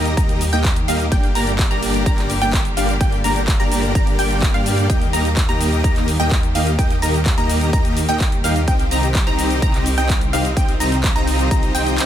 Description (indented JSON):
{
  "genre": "EDM, festival progressive house",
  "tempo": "127 BPM",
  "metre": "4/4",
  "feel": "straight",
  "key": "Eb major",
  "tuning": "A4 = 440 Hz",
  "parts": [
    { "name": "clear symphonic string section", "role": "sustained chords", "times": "0.0-12.1 s", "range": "D3 to G4", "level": "-28 LUFS", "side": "left 1 dB", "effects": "sidechain pumping" },
    { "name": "wide unison pluck", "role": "arpeggios", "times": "0.0-12.1 s", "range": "F5 to Bb5", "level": "-25 LUFS", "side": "equal", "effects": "sidechain pumping, ping-pong delay" },
    { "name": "dense compressed supersaw", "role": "riff", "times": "0.0-12.1 s", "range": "Bb3 to Bb5", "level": "-22 LUFS", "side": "equal", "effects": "sidechain pumping, ping-pong delay" },
    { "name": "detuned saw bass", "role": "bass", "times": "0.0-12.0 s", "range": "G1 to G2", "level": "-22 LUFS", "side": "equal", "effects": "sidechain pumping" },
    { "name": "big-room dance drum kit", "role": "drums", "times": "0.1-12.1 s", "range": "handclaps, hi-hat, shaker", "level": "-26 LUFS", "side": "equal", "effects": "studio reverb" },
    { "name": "electronic kick drum", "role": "drums", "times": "0.2-11.6 s", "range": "none", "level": "-18 LUFS", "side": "equal", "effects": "studio reverb" }
  ],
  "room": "little or no reverb",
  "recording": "none",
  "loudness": "-15 LUFS",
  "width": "side -10 dB against mid",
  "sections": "0.0-12.1 A section",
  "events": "none",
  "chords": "0.0 Eb; 1.1 Gm; 4.9 Eb; 8.7 Cm",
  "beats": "0.17 0.65 | 1.12 1.59 2.06 2.53 | 3.01 3.48 3.95 4.42 | 4.90 5.37 5.84 6.31 | 6.79 7.26 7.73 8.20 | 8.68 9.15 9.62 10.09 | 10.57 11.04 11.51 11.98"
}